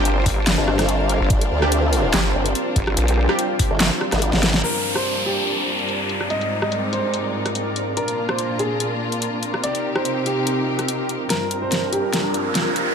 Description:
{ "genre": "heavy wobble dubstep", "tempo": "144 BPM", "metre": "4/4", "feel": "swing 54% on 16ths, half-time", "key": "G phrygian", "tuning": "A4 = 440 Hz", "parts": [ { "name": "rich studio string section", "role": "sustained chords", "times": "0.0-12.9 s", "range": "G2 to Bb4", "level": "-26 LUFS", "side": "left 1 dB", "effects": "sidechain pumping, low-pass filter" }, { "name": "orchestra-hit-like synth stab", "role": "stabs", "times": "0.0-3.4 s", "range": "G3 to G4", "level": "-27 LUFS", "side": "right 2 dB", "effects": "built-in reverb, dub echo" }, { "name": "vowel-sweep wobble bass", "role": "bass", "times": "0.0-3.3 s", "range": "G1 to Bb1", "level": "-20 LUFS", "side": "equal", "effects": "chorus, overdrive" }, { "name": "granular cloud pad", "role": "texture", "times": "0.0-12.9 s", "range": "Ab2 to F5", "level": "-27 LUFS", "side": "right 1 dB", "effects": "built-in reverb, sidechain pumping" }, { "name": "dubstep drum kit", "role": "drums", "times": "0.1-12.8 s", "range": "crash cymbal, handclaps, hi-hat, rim click, snare drum", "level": "-22 LUFS", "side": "equal", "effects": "overdrive, low-pass filter on hats, low-pass filter on snare, low-pass filter on cymbals" }, { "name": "electronic kick drum", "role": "drums", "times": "0.3-3.7 s", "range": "none", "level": "-20 LUFS", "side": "equal", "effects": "overdrive" }, { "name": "formant-sweep wobble bass", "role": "bass", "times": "0.6-4.6 s", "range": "G1 to D2", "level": "-20 LUFS", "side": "equal", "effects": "chorus, overdrive" }, { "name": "dark grand piano", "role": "melody", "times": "4.6-12.2 s", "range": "G4 to Eb5", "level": "-26 LUFS", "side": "right 1 dB", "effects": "low-pass filter, dub echo" }, { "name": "downlifter and riser", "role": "sound effects", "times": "4.6-8.0, 11.9-12.9 s", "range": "none", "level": "-26 LUFS", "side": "equal", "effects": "none" } ], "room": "light reverb", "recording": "none", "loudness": "-18 LUFS", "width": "side -7 dB against mid", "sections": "0.0-4.6 A section; 4.6-11.3 B section; 11.3-12.9 C section", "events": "drop 0.0-4.6; drum fill 4.3-4.6, 11.3-12.9; band accent 4.5; filter sweep on drum 4.6-11.3; build-up 11.3-12.9; filter sweep on grand piano 11.3-12.9; riser 11.9-12.9", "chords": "0.0 Gm; 6.3 Ab; 8.0 Bb; 9.6 Cm; 11.3 Gm" }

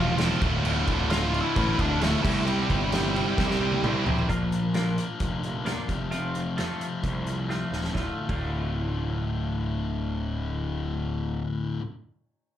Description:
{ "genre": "quiet-loud alternative rock", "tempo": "131 BPM", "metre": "4/4", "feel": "straight", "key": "D minor", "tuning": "A4 = 440 Hz", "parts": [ { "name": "octave-fuzz lead guitar", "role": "melody", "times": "0.0-3.8 s", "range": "G3 to F5", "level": "-30 LUFS", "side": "equal", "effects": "distortion, plate reverb" }, { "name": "heavy high-gain guitar", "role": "riff", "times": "0.0-4.1 s", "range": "D2 to C4", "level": "-32 LUFS", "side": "equal", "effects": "distortion" }, { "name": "sludgy distorted guitar", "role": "riff", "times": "0.0-4.3 s", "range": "D2 to C5", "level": "-30 LUFS", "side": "right 10 dB", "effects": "overdrive" }, { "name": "thick fuzz guitar", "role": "riff", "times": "0.0-11.8 s", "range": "D2 to C5", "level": "-31 LUFS", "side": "left 6 dB", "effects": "distortion, slapback echo" }, { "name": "fuzz picked electric bass", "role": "bass", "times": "0.0-11.4 s", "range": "D1 to C2", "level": "-29 LUFS", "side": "right 1 dB", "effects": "overdrive" }, { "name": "loose indie drum kit", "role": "drums", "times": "0.2-8.4 s", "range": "crash cymbal, hi-hat, kick drum, snare drum, toms", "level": "-30 LUFS", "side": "right 1 dB", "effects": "none" }, { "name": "clean electric guitar", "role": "arpeggios", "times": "4.3-11.8 s", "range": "D2 to Bb4", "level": "-36 LUFS", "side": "right 2 dB", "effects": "phaser, plate reverb" } ], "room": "light reverb", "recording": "live gig heard through the venue's PA, club reverb", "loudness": "-24 LUFS", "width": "side -11 dB against mid", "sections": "0.0-4.3 A section; 4.3-7.9 B section; 7.9-11.6 C section", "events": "drum fill 3.4-4.3, 7.5-7.9", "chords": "0.4 Dm; 2.2 C; 4.3 Bb; 5.9 F; 7.9 Dm" }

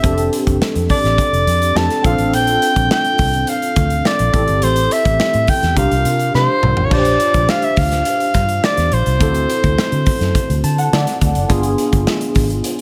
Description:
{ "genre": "polished 1980s jazz-funk pop", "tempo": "105 BPM", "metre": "4/4", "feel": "straight", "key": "unclear", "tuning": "A4 = 438 Hz", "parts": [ { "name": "warm soprano saxophone", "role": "melody", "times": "0.0-10.6 s", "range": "C5 to A5", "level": "-20 LUFS", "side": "equal", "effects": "none" }, { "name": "barky tine electric piano", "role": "accompaniment", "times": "0.0-12.8 s", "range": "B3 to A5", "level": "-23 LUFS", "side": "equal", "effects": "ensemble chorus" }, { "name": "vintage muted fingered electric bass", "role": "bass", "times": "0.0-12.6 s", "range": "F1 to D3", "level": "-20 LUFS", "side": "equal", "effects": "none" }, { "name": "modern studio drum kit", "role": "drums", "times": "0.0-12.8 s", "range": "crash cymbal, hi-hat, kick drum, snare drum, toms", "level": "-22 LUFS", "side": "equal", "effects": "none" } ], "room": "light reverb, studio ambience", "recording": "none", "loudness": "-15 LUFS", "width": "mono", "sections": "0.0-6.9 A section; 6.9-12.8 B section", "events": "drum fill 6.3-6.9; tine electric piano fill 10.4-11.5", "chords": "0.0 F69; 2.0 Bbmaj9; 4.3 Am7; 5.8 C7sus4; 6.9 Bb6; 9.2 D7; 11.5 G7b9" }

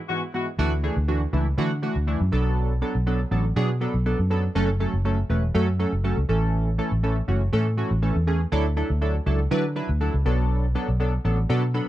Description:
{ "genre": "dance-pop", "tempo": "121 BPM", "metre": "4/4", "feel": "straight", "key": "unclear", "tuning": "A4 = 439 Hz", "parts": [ { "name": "warm horn section", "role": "melody", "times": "0.1-0.5 s", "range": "F#4", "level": "-32 LUFS", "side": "left 6 dB", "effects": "tape echo" }, { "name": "chorused retro synth keys", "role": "accompaniment", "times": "0.1-11.9 s", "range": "G#2 to B5", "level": "-26 LUFS", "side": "right 1 dB", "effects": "none" }, { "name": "vintage muted fingered electric bass", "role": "bass", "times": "0.6-11.8 s", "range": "E1 to D3", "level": "-22 LUFS", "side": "equal", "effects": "none" } ], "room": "studio reverb", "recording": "dry, close 1970s-style studio recording", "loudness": "-21 LUFS", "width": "side -14 dB against mid", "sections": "0.6-11.9 A section", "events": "synth keys fill 11.5-11.9", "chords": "0.0 Eadd9/G#; 0.6 Dadd9; 2.3 Bm7; 4.6 F#m; 6.3 A; 8.5 Dadd9; 10.3 Bm7" }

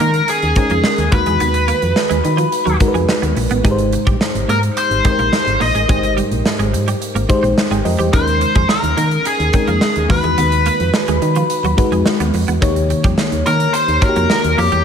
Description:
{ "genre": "1980s-style pop", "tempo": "107 BPM", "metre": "4/4", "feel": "straight", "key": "unclear", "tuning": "A4 = 440 Hz", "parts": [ { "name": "nasal lead guitar with a parked wah", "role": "melody", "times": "0.0-14.8 s", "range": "G4 to Eb5", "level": "-18 LUFS", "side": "left 1 dB", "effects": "overdrive" }, { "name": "FM electric piano with soft pad layer", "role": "accompaniment", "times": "0.0-14.8 s", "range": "Ab2 to G5", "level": "-20 LUFS", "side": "left 1 dB", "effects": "chorus" }, { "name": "twelve-string electric guitar", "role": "riff", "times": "0.0-14.8 s", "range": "F3 to Eb4", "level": "-25 LUFS", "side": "right 8 dB", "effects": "ensemble chorus" }, { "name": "solid FM bass", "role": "bass", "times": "0.0-14.8 s", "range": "Ab1 to Eb3", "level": "-19 LUFS", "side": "equal", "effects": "none" }, { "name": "big rock drum kit", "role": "drums", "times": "0.0-14.8 s", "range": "hi-hat, kick drum, snare drum", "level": "-19 LUFS", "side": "equal", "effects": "none" } ], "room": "light reverb", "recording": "none", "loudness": "-13 LUFS", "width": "side -7 dB against mid", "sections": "0.0-14.8 A section", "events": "none", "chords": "0.0 Eb7sus4; 1.1 B6/D#; 3.6 Abmaj7; 8.1 Eb7sus4; 10.1 B6/D#; 12.6 Eb7" }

